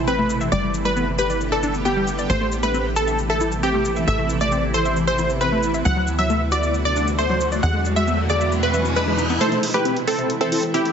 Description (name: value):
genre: uplifting trance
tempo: 135 BPM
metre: 4/4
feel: straight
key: A dorian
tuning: A4 = 439 Hz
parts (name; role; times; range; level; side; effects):
- shimmering ambient pad; sustained chords; 0.0-10.9 s; B2 to G4; -25 LUFS; right 1 dB; chorus, built-in reverb, phaser
- tight sequencer bass; bass; 0.0-9.4 s; G1 to E2; -25 LUFS; equal; none
- supersaw stab; melody; 0.1-10.9 s; C4 to F#5; -22 LUFS; right 1 dB; dub echo
- analog pluck; arpeggios; 0.1-10.9 s; F#3 to E5; -26 LUFS; left 3 dB; chorus, dub echo
- electronic shaker and hi-hat; drums; 0.1-10.9 s; none; -33 LUFS; left 2 dB; none
- riser; sound effects; 7.1-9.4 s; none; -28 LUFS; right 2 dB; none
- plucky unison lead; second line; 9.4-10.9 s; G4 to C5; -27 LUFS; equal; phaser
room: light reverb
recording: heavily compressed radio sound, nothing above 7.8 kHz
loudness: -18 LUFS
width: side -7 dB against mid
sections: 0.0-9.4 A section; 9.4-10.9 B section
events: riser 7.1-9.4; build-up 9.4-10.9; filter sweep on synth arpeggio sound 9.4-10.9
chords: 0.0 Am; 0.5 G; 2.3 Am; 5.9 D; 7.6 E; 9.4 Am